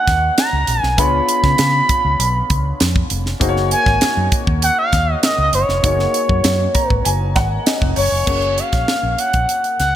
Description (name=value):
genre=polished 1980s jazz-funk pop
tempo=99 BPM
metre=4/4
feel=straight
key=F# major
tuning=A4 = 443 Hz
part: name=expressive portamento lead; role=melody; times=0.0-9.9 s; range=C#5 to B5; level=-17 LUFS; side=equal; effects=chorus
part: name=warm baby grand piano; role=accompaniment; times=0.0-10.0 s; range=A#3 to A#5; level=-23 LUFS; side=left 3 dB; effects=analog chorus
part: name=vintage muted fingered electric bass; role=bass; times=0.1-10.0 s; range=E#1 to C#3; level=-20 LUFS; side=equal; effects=none
part: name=tight funk drum kit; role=drums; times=0.1-9.9 s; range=crash cymbal, hi-hat, kick drum, snare drum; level=-18 LUFS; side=right 1 dB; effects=none
room=light reverb, small room ambience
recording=bright 1980s-style digital production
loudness=-14 LUFS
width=side -11 dB against mid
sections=0.0-8.3 A section; 8.3-10.0 B section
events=grand piano fill 6.4-8.3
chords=0.0 D#m7; 1.0 C#7b9; 3.4 F#69; 8.3 F#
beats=0.38 | 0.98 1.59 2.20 2.80 | 3.41 4.02 4.62 5.23 | 5.84 6.45 7.05 7.66 | 8.27 8.88 9.49